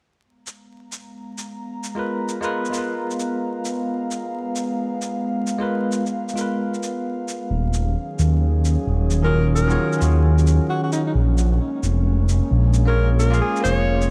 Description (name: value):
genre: future garage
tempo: 132 BPM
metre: 4/4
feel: swing 62% on 16ths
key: G# dorian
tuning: A4 = 440 Hz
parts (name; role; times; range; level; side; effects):
- airy breathy pad; sustained chords; 1.1-14.1 s; D#3 to A#5; -29 LUFS; equal; chorus
- shaker; drums; 0.5-14.1 s; none; -37 LUFS; equal; overdrive, small room reverb
- bell-like tine electric piano; accompaniment; 1.9-14.1 s; D#3 to E#5; -28 LUFS; equal; low-pass filter, analog delay
- dark detuned saw bass; bass; 7.5-14.1 s; D#1 to D#2; -20 LUFS; equal; none
- breathy alto saxophone; melody; 9.2-14.1 s; D#4 to C#5; -28 LUFS; equal; tape echo
room: light reverb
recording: vinyl crackle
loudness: -21 LUFS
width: mono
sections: 0.2-14.1 A section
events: none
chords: 0.2 G#m69; 7.5 D#m11; 11.2 A#m7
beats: | 0.24 0.70 1.15 1.61 | 2.06 2.52 2.97 3.42 | 3.88 4.33 4.79 5.24 | 5.70 6.15 6.61 7.06 | 7.52 7.97 8.43 8.88 | 9.33 9.79 10.24 10.70 | 11.15 11.61 12.06 12.52 | 12.97 13.43 13.88